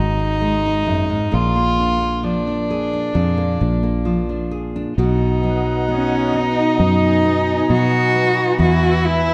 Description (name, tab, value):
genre	acoustic folk-pop ballad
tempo	66 BPM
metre	4/4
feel	straight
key	B major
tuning	A4 = 441 Hz
part	rich violin	second line	0.0-9.3 s	D4 to E#4	-24 LUFS	equal	none
part	nylon-string guitar	accompaniment	0.0-9.3 s	F#2 to G#4	-24 LUFS	equal	none
part	fingered electric bass	bass	0.0-9.3 s	G#1 to B2	-22 LUFS	equal	none
part	lush unison pad	sustained chords	5.0-9.3 s	B4 to E6	-30 LUFS	equal	chorus
part	dark cello	melody	5.9-9.3 s	C#4 to F#4	-21 LUFS	equal	none
room	moderate recital hall reverb, RT60 1.5 s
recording	dark, warm production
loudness	-18 LUFS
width	mono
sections	0.0-5.0 A section; 5.0-9.3 B section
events	none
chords	0.0 G#7; 1.3 A#7; 5.0 B; 8.6 E